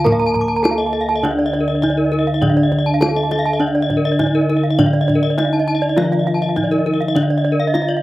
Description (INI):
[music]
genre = Balinese gamelan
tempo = 102 BPM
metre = 4/4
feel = straight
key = D pelog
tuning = A4 = 440 Hz
[part]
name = gamelan-type bronze metallophone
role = melody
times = 0.0-8.0 s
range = D4 to Bb4-20c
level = -20 LUFS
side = equal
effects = none
[part]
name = gamelan-type bronze metallophone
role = accompaniment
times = 0.0-8.0 s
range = D3 to Bb3-20c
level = -21 LUFS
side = equal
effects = none
[part]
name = gamelan-type bronze metallophone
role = arpeggios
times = 0.0-8.0 s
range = Bb4-20c to D6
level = -22 LUFS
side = left 3 dB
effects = slapback echo
[part]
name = gamelan-type bossed gongs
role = bass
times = 0.0-8.0 s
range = D2 to Bb4-20c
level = -23 LUFS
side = left 1 dB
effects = none
[part]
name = gamelan-type bronze metallophone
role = arpeggios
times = 0.1-8.0 s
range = D5 to Bb5-20c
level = -22 LUFS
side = right 4 dB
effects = slapback echo
[part]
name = kendang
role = percussion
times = 0.1-7.9 s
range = none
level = -23 LUFS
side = right 1 dB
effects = none
[sound]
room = little or no reverb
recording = recorded outdoors, with no room sound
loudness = -14 LUFS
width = side -16 dB against mid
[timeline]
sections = 0.0-8.0 A section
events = none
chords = none